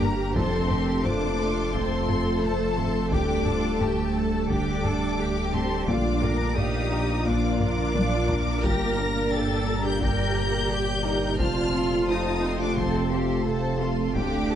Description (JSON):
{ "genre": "cinematic, hybrid orchestral and electronic film score", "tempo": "87 BPM", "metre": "4/4", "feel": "straight", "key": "unclear", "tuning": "A4 = 440 Hz", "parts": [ { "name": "clear symphonic violin section", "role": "melody", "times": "0.0-14.6 s", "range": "A5 to Bb6", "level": "-33 LUFS", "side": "left 4 dB", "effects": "none" }, { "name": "rich studio violin section", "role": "second line", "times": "0.0-14.6 s", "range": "G4 to C6", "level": "-33 LUFS", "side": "left 2 dB", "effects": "none" }, { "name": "rich symphonic viola section", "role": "accompaniment", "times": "0.0-14.6 s", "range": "A3 to Bb4", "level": "-31 LUFS", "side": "right 2 dB", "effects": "none" }, { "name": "dark trombone section", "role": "sustained chords", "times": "0.0-14.6 s", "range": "A2 to Bb3", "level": "-34 LUFS", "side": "right 2 dB", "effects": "none" }, { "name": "ethereal airy pad", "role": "sustained chords", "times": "0.0-14.6 s", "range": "A3 to G5", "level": "-33 LUFS", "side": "right 1 dB", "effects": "ensemble chorus, built-in reverb" }, { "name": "mellow French horn section", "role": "sustained chords", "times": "0.0-14.6 s", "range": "A3 to D5", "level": "-32 LUFS", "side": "left 3 dB", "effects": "none" }, { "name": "harp-like synth pluck", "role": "arpeggios", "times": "0.0-14.6 s", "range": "D3 to D5", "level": "-33 LUFS", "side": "left 4 dB", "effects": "chorus" }, { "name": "dark symphonic cello section", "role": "bass", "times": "0.0-14.6 s", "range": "D4 to Bb4", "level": "-33 LUFS", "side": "right 2 dB", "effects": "none" }, { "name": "rich symphonic double bass section", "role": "bass", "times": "0.0-14.6 s", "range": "F1 to G2", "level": "-32 LUFS", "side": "right 3 dB", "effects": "none" }, { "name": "saturated sub bass", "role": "bass", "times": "0.0-14.6 s", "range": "D1 to Bb1", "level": "-32 LUFS", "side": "equal", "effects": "none" }, { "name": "taiko ensemble", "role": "drums", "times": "0.0-14.6 s", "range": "none", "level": "-30 LUFS", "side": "equal", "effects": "none" } ], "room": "moderate scoring stage reverb, RT60 1.9 s", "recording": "nothing above 10.7 kHz", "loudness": "-22 LUFS", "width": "side -10 dB against mid", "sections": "0.0-14.6 A section", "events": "drum fill 7.6-8.6", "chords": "0.4 F; 3.1 Dsus4; 5.9 Bb; 8.6 Gm; 11.4 F" }